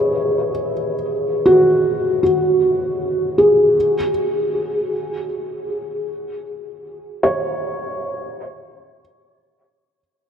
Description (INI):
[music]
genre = ambient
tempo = free time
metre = none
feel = none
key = unclear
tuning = A4 = 440 Hz
[part]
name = felt-muted upright piano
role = solo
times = 0.0-10.0 s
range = F#4 to D#5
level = -16 LUFS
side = equal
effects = diffuse ambient delay
[sound]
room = wet huge ambient reverb, RT60 8.6 s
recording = dark, warm production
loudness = -16 LUFS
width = side -8 dB against mid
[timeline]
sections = 0.0-10.0 A section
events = fade-out 5.8-10.0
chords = 0.0 G#m7; 3.8 C#5